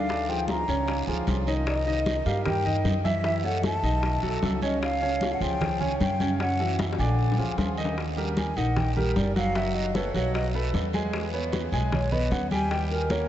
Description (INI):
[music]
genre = Afro-Cuban jazz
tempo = 152 BPM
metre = 4/4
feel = straight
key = unclear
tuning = A4 = 440 Hz
[part]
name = breathy mellow concert flute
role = melody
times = 0.0-13.3 s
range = Bb4 to Bb5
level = -30 LUFS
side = left 1 dB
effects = ping-pong delay
[part]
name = warm concert grand piano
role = accompaniment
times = 0.0-13.3 s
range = Db3 to Ab5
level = -29 LUFS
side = right 1 dB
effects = none
[part]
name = upright bass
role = bass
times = 0.0-13.2 s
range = Gb1 to G2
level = -29 LUFS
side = equal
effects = none
[part]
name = bongos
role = percussion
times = 0.1-13.3 s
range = none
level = -35 LUFS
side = left 4 dB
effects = none
[part]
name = congas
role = percussion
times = 0.1-13.3 s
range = none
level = -33 LUFS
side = equal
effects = none
[part]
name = guiro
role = percussion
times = 0.1-13.3 s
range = none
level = -40 LUFS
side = right 5 dB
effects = none
[sound]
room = moderate huge ambient reverb, RT60 8.2 s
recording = dreamy mix soaked in reverb, nothing above 8.0 kHz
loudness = -24 LUFS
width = side -11 dB against mid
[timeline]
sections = 0.0-8.0 A section; 8.0-13.3 B section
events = drum fill 6.8-8.0; flute solo 8.0-13.3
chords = 0.1 Ddim; 0.9 Db; 1.7 Cm7; 3.2 Gbm7; 4.0 B9; 4.8 Db; 6.4 Gb7; 7.2 Bb7; 8.0 Eb; 9.6 Gbmadd11; 10.3 B5; 11.1 E6; 12.7 Eb7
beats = | 0.09 0.49 0.88 1.27 | 1.67 2.06 2.46 2.85 | 3.25 3.64 4.03 4.43 | 4.82 5.22 5.61 6.01 | 6.40 6.79 7.19 7.58 | 7.98 8.37 8.77 9.16 | 9.56 9.95 10.35 10.74 | 11.13 11.53 11.92 12.32 | 12.71 13.11